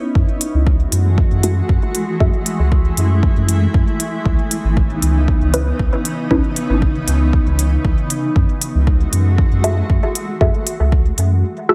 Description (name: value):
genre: dub techno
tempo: 117 BPM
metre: 4/4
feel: straight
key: unclear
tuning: A4 = 439 Hz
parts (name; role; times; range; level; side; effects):
- granular cloud pad; sustained chords; 0.0-11.4 s; C#3 to F#4; -24 LUFS; equal; built-in reverb, sidechain pumping
- soft dub sub bass; bass; 0.2-11.4 s; G#1 to F#2; -18 LUFS; equal; sidechain pumping
- electronic kick drum; drums; 0.2-11.0 s; none; -19 LUFS; equal; studio reverb
- electronic hi-hat; drums; 0.4-11.3 s; none; -24 LUFS; equal; studio reverb
- filtered dub chord stab; stabs; 1.4-2.3, 5.5-6.4, 9.6-11.7 s; C#4 to E5; -23 LUFS; equal; phaser, sidechain pumping, dub echo
room: digital ambience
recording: echo-heavy mix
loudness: -16 LUFS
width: mono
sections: 0.0-11.7 A section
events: filter sweep on synth stab 0.0-11.7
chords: 0.2 F#m9; 4.3 C#m9; 8.4 F#m9